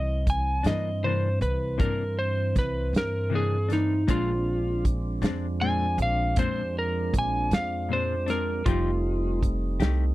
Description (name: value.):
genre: slow blues.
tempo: 52 BPM (dotted quarters).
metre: 12/8.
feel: straight.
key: unclear.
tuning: A4 = 440 Hz.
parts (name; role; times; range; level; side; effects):
electric slide guitar; melody; 0.0-9.4 s; Eb4 to Ab5; -28 LUFS; equal; none.
tonewheel organ; sustained chords; 0.0-10.1 s; E3 to Eb4; -34 LUFS; right 3 dB; slow rotary speaker.
upright bass; bass; 0.0-10.1 s; F1 to G2; -28 LUFS; equal; none.
warm soul drum kit; drums; 0.3-10.0 s; hi-hat, kick drum, snare drum; -25 LUFS; equal; none.
clean electric guitar; accompaniment; 0.6-10.0 s; Bb2 to G4; -30 LUFS; left 7 dB; tremolo.
room: little or no reverb.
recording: dry, close 1970s-style studio recording.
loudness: -24 LUFS.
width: side -17 dB against mid.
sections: 0.0-10.1 A section.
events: none.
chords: 0.0 C9; 4.1 Bb9; 8.7 F9.